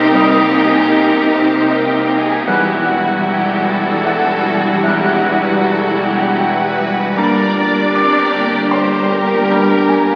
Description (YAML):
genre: cinematic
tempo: 77 BPM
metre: 3/4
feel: rubato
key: unclear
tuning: A4 = 441 Hz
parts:
  - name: rich studio violin section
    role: melody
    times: 0.0-10.2 s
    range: F#4 to D5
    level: -24 LUFS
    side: equal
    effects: none
  - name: rich studio violin section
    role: second line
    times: 0.0-10.2 s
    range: F#4 to D5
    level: -21 LUFS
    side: equal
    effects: none
  - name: felt-muted upright piano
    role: accompaniment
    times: 0.0-10.2 s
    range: C2 to D6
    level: -21 LUFS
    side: equal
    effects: none
  - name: rich studio viola section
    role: accompaniment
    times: 0.0-10.2 s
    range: G3 to E4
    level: -22 LUFS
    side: equal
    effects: none
  - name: dark French horn section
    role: sustained chords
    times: 0.0-10.2 s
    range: G3 to E4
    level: -21 LUFS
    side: equal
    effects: none
  - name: clear studio cello section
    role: bass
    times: 0.0-10.2 s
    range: E2 to C3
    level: -25 LUFS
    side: equal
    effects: none
  - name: rich studio double bass section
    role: bass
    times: 0.0-10.2 s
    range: E1 to C2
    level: -30 LUFS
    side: equal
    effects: none
  - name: bright small flute group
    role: second line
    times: 0.1-9.9 s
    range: D6 to F#6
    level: -25 LUFS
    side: equal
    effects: none
  - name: clear clarinet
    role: second line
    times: 0.1-9.8 s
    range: G3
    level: -27 LUFS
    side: equal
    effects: none
room: wet scoring stage reverb, RT60 2.0 s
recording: very old 78 rpm record, vinyl crackle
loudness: -14 LUFS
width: mono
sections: 0.0-10.2 A section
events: none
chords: 0.0 Cm7; 2.5 Emadd9; 7.2 Gm